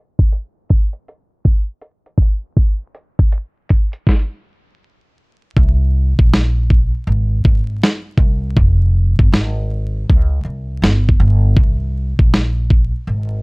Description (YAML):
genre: lo-fi hip hop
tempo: 80 BPM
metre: 4/4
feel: swing 65% on 16ths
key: unclear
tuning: A4 = 441 Hz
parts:
  - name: dusty soul sampler-style drum kit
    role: drums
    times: 0.2-12.9 s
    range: hi-hat, kick drum, snare drum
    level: -12 LUFS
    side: equal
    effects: vintage 12-bit sampler grit
  - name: upright bass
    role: bass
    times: 5.6-13.4 s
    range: F1 to Db2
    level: -16 LUFS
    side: equal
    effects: tube saturation
room: little or no reverb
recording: dry, gritty hardware recording, vinyl crackle, low-pass filter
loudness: -13 LUFS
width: side -40 dB against mid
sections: 0.0-5.6 A section; 5.6-13.4 B section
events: filter sweep 0.0-5.6; stop 4.1-5.6; hi-hats muted 5.6-13.4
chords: none